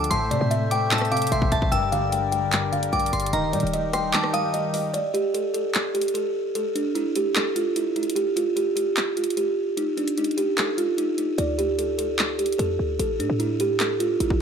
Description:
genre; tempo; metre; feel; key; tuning
hip hop, trap; 149 BPM; 4/4; half-time; unclear; A4 = 440 Hz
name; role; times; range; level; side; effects
buzzing kalimba; melody; 0.0-14.4 s; D4 to A5; -23 LUFS; right 1 dB; digital delay
glassy synth bell; second line; 0.0-4.9 s; A5 to E6; -28 LUFS; right 4 dB; chorus, digital delay
warbly lo-fi synth keys; accompaniment; 0.0-5.0 s; G2 to G3; -27 LUFS; left 3 dB; chorus
hand-pumped harmonium; sustained chords; 0.0-4.9 s; Eb3 to E5; -32 LUFS; left 2 dB; none
short 808-style bass; bass; 0.0-4.1, 11.4-14.4 s; Eb1 to Bb2; -30 LUFS; equal; none
trap drum kit; drums; 0.0-14.4 s; handclaps, hi-hat, kick drum, rim click; -26 LUFS; equal; overdrive
room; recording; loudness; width
light reverb; none; -21 LUFS; side -7 dB against mid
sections
0.0-4.9 A section; 4.9-14.4 B section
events
kick muted 4.1-4.9, 4.9-11.4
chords
0.1 Am; 1.7 Gm; 3.3 Eb; 4.9 N.C.; 11.4 Dm; 13.0 A5

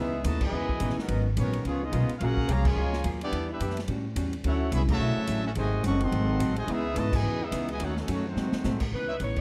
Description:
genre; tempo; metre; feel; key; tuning
jazz, big band swing; 214 BPM; 4/4; swing 59% on 8ths; C# minor; A4 = 440 Hz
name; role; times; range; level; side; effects
clear trumpet section; melody; 0.0-8.8 s; A3 to C#6; -37 LUFS; equal; plate reverb
clear trombone section; second line; 0.0-8.8 s; B2 to F#4; -35 LUFS; equal; none
archtop guitar, miked and amplified; accompaniment; 0.0-9.4 s; G#2 to A#4; -37 LUFS; equal; none
upright bass; bass; 0.0-9.4 s; F#1 to A2; -31 LUFS; equal; none
swinging big-band drum kit; drums; 0.2-9.4 s; crash cymbal, hi-hat, kick drum, ride cymbal, snare drum; -37 LUFS; equal; none
clear saxophone section; melody; 8.9-9.4 s; B4 to C#5; -34 LUFS; equal; none
clear trumpet section; stabs; 9.1-9.2 s; D#4 to E5; -40 LUFS; equal; none
room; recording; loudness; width
moderate large studio reverb, RT60 0.8 s; dark, warm production; -28 LUFS; mono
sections
0.0-8.9 A section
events
band accent 0.4, 2.6, 4.9, 7.1; drum fill 8.4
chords
0.0 C#m9; 1.1 G#m11; 1.6 C#13; 2.2 F#maj9; 3.3 Em7; 3.9 A6; 4.4 Dmaj9; 5.6 G#7b9; 6.7 C#m9; 7.8 D#m7b5; 8.4 G#7b9

